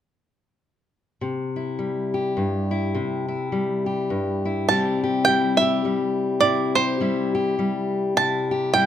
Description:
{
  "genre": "acoustic folk duo or small band",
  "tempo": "104 BPM",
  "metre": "3/4",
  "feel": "swing 58% on 8ths",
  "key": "C major",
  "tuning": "A4 = 439 Hz",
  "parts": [
    { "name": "fingerpicked steel-string acoustic guitar", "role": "accompaniment", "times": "1.2-8.9 s", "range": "G2 to G4", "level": "-22 LUFS", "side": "left 3 dB", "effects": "none" },
    { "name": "bluegrass banjo", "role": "melody", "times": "4.7-8.9 s", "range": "C5 to A5", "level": "-20 LUFS", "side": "right 4 dB", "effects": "none" }
  ],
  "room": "light reverb",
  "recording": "close, detailed microphones",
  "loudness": "-20 LUFS",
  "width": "side -10 dB against mid",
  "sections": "1.2-4.7 A section; 4.7-8.9 B section",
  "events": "none",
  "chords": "1.2 C"
}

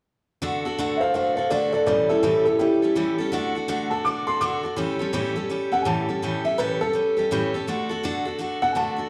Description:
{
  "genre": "rock",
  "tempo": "166 BPM",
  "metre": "4/4",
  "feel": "swing 62% on 8ths",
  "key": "D major",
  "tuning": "A4 = 440 Hz",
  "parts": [
    { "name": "picked steel-string acoustic guitar", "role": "accompaniment", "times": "0.4-9.1 s", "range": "A2 to A4", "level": "-28 LUFS", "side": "equal", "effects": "plate reverb, slapback echo" },
    { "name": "dark upright piano", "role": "melody", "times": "1.0-9.1 s", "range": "E4 to D6", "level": "-25 LUFS", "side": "equal", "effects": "plate reverb, slapback echo, tape echo" }
  ],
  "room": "wet club reverb, RT60 0.8 s",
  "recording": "live gig heard through the venue's PA, club reverb",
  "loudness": "-24 LUFS",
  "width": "mono",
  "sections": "0.4-3.3 A section; 3.3-9.1 B section",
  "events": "none",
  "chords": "0.4 D; 1.9 A7; 3.3 D; 4.8 A7; 7.7 D"
}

